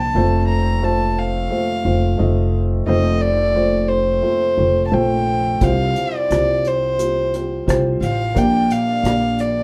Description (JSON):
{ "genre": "acoustic folk-pop ballad", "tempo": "88 BPM", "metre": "4/4", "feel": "straight", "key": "unclear", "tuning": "A4 = 442 Hz", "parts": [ { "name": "rich violin", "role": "melody", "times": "0.0-9.6 s", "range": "C5 to Bb5", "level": "-22 LUFS", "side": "equal", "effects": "none" }, { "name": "felt-muted upright piano", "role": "accompaniment", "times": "0.0-9.6 s", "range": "F1 to Eb5", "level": "-22 LUFS", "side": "equal", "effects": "none" }, { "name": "upright bass", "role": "bass", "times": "0.0-9.6 s", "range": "F1 to C2", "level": "-23 LUFS", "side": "equal", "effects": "none" }, { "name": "unplugged drum kit", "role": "drums", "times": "5.6-9.5 s", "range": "hi-hat, kick drum, rim click", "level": "-26 LUFS", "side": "equal", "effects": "none" } ], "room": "wet studio ambience, RT60 0.5 s", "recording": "heard from further back in the room", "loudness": "-18 LUFS", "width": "mono", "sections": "0.0-5.6 A section; 5.6-9.6 B section", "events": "none", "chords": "0.1 F; 5.6 Csus4; 8.4 Gm/Bb", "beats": "| 0.14 0.82 1.50 2.19 | 2.87 3.55 4.23 4.92 | 5.62 6.30 6.99 7.67 | 8.36 9.04" }